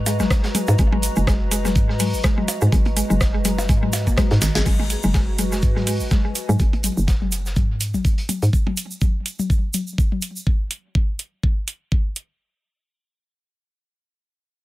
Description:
minimal techno; 124 BPM; 4/4; swing 56% on 16ths; G# minor; A4 = 441 Hz
hollow knocking FM bass; bass; 0.0-8.5 s; F#1 to G#2; -21 LUFS; equal; sidechain pumping
warbly tape-like pad; texture; 0.0-6.6 s; F#4 to A#5; -30 LUFS; equal; chorus, built-in reverb, sidechain pumping
mallet-like synth pluck; riff; 0.1-6.5 s; D#3 to G#4; -26 LUFS; equal; chorus, cassette tape, sidechain pumping, analog delay
booming analog drum machine; drums; 0.1-12.3 s; crash cymbal, hi-hat, rim click, snare drum; -26 LUFS; right 1 dB; overdrive, analog delay
crunchy breakbeat drum kit; drums; 0.1-8.5 s; hi-hat, snare drum; -35 LUFS; equal; high-pass filter on hats, high-pass filter on snare, high-pass filter on room, analog delay
egg shaker; percussion; 0.1-10.4 s; -30 LUFS; right 3 dB
electronic percussion blips and toms; percussion; 0.1-10.2 s; -28 LUFS; left 3 dB; dub echo
electronic kick drum; drums; 0.3-12.0 s; -19 LUFS; equal
little or no reverb; echo-heavy mix; -18 LUFS; side -17 dB against mid
0.0-4.7 A section; 4.7-12.4 B section
drop 0.0-4.7; drum fill 4.4
0.0 G#m7

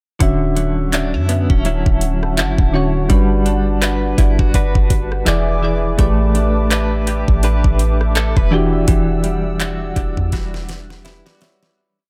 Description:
contemporary R&B; 83 BPM; 4/4; swing 58% on 16ths; E dorian; A4 = 440 Hz
soft electric-piano-like synth keys; accompaniment; 0.2-12.0 s; D3 to E5; -24 LUFS; equal; chorus, tape echo
hollow soft pad; sustained chords; 0.2-11.7 s; C#4 to E6; -30 LUFS; equal; chorus
direct-recorded clean electric guitar; arpeggios; 0.2-12.1 s; D3 to B4; -26 LUFS; equal; tremolo, tape echo
soft 808-style bass; bass; 0.2-11.2 s; D1 to F#2; -20 LUFS; equal
smooth R&B drum kit; drums; 0.2-11.8 s; handclaps, hi-hat, kick drum, rim click, snare drum; -20 LUFS; equal
digital ambience; echo-heavy mix; -16 LUFS; mono
0.2-11.8 chorus
fade-out 8.9-11.8; drum fill 10.3-11.8
0.2 Dmaj9; 3.1 Gmaj7; 5.3 E7; 6.0 A9sus4; 8.5 Em9

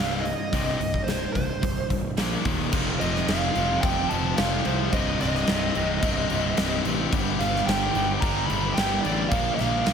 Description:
hard rock; 109 BPM; 4/4; straight; A4 = 440 Hz
bluesy overdriven lead guitar; melody; 0.0-9.9 s; C5 to B5; -28 LUFS; right 2 dB; distortion, slapback echo
distorted electric guitar; riff; 0.0-9.9 s; C2 to Bb3; -29 LUFS; left 11 dB; overdrive, slapback echo
sludgy distorted guitar; riff; 0.0-9.9 s; C2 to Bb3; -30 LUFS; right 8 dB; overdrive, slapback echo
fuzz picked electric bass; bass; 0.0-9.9 s; C1 to C2; -30 LUFS; left 1 dB; overdrive
huge arena drum kit; drums; 0.3-9.9 s; crash cymbal, hi-hat, kick drum, snare drum; -27 LUFS; equal
moderate lush hall reverb, RT60 1.8 s, small room ambience; big arena sound; -22 LUFS; side -7 dB against mid
0.0-2.7 A section; 2.7-9.9 B section
0.0 Cm; 2.2 Bb5; 2.5 Eb5; 2.7 F5; 4.9 Cm; 7.1 G5; 9.3 Bb5

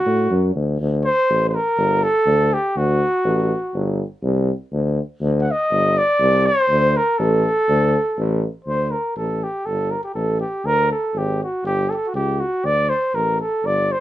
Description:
balkan folk; 122 BPM; 2/4; swing 55% on 16ths; D phrygian dominant; A4 = 440 Hz
dark trumpet; melody; 0.0-14.0 s; F#4 to F#5; -18 LUFS; equal
warm tuba; bass; 0.1-13.9 s; G1 to A2; -20 LUFS; left 1 dB
moderate studio reverb, RT60 0.6 s; dark, warm production, nothing above 10.4 kHz; -17 LUFS; side -14 dB against mid
0.8-8.7 A section; 8.7-14.0 B section
trumpet solo 0.8-8.7
0.0 D; 0.8 D5; 1.8 G5; 2.8 D; 3.7 Gsus4; 4.7 N.C.; 5.7 G5; 6.7 D5; 9.7 Gsus2; 10.6 Bbaug7; 11.6 A7/G (rootless); 12.6 D5

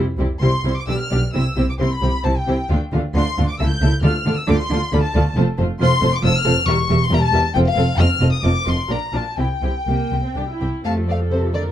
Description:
quick classical-period movement for string orchestra; 121-139 BPM; 3/4; rubato; F major from 5.4 s; A4 = 440 Hz
warm studio violin section; second line; 0.0-11.7 s; F4 to G5; -28 LUFS; equal
rich studio viola section; accompaniment; 0.0-11.7 s; C3 to A4; -25 LUFS; equal
warm studio cello section; bass; 0.0-11.6 s; E2 to A3; -23 LUFS; right 1 dB
warm studio double bass section; bass; 0.0-11.7 s; E1 to F2; -20 LUFS; right 1 dB
warm chamber violin section; melody; 0.4-11.6 s; C5 to G6; -23 LUFS; left 4 dB
light reverb; dark, warm production; -16 LUFS; side -11 dB against mid
0.0-10.8 A section
0.0 C; 0.9 G7/B; 1.3 C; 2.7 Dm; 3.6 A7/C#; 4.0 Dm; 5.4 F; 6.7 Edim; 7.6 F; 8.9 Bb; 9.4 C; 10.8 F

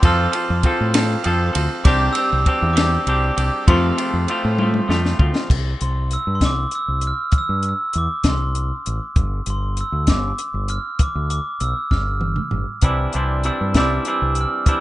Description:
indie rock; 66 BPM (dotted quarters); 6/8; straight; C major; A4 = 438 Hz
glockenspiel with hard plastic mallets; melody; 0.0-14.8 s; C6 to F6; -24 LUFS; right 1 dB; analog delay
electric guitar through a small old amp; riff; 0.0-5.5, 12.8-14.8 s; F2 to A4; -21 LUFS; equal
growling fingered electric bass; bass; 0.0-14.4 s; G1 to A2; -21 LUFS; equal; overdrive
compact cocktail drum kit; drums; 0.0-14.8 s; crash cymbal, hi-hat, kick drum, ride cymbal, snare drum, toms; -20 LUFS; equal
studio reverb; rough home demo mix, nothing above 10.4 kHz; -17 LUFS; side -16 dB against mid
0.0-5.5 A section; 5.5-14.8 B section
drum fill 4.6-5.5, 11.9-12.8
0.0 F; 1.9 Csus2; 3.7 F; 5.5 C; 9.2 G7(no3); 12.8 Cadd9

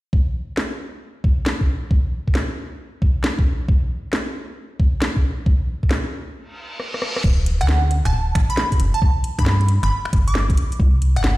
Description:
UK garage, two-step garage; 135 BPM; 4/4; swing 66% on 16ths; A4 = 441 Hz
electronic kick drum; drums; 0.1-10.9 s; -17 LUFS; equal
garage drum kit; drums; 0.6-11.4 s; crash cymbal, finger snaps, hi-hat, rim click, snare drum; -26 LUFS; equal
reverse cymbal; sound effects; 6.5-7.2 s; -29 LUFS; equal
organ-like FM bass; bass; 7.2-11.4 s; D1 to G2; -17 LUFS; equal
glassy wavetable pluck; melody; 7.6-11.3 s; F#5 to D6; -25 LUFS; right 2 dB; chorus, ping-pong delay
light reverb, digital ambience; played on a big sound system in a bare room, large studio reverb; -17 LUFS; side -18 dB against mid
0.1-7.2 A section; 7.2-11.4 B section
stop 6.4-7.2; reverse cymbal 6.5-7.2; drum fill 6.8-7.2
0.1 N.C.; 9.0 G; 10.6 C5

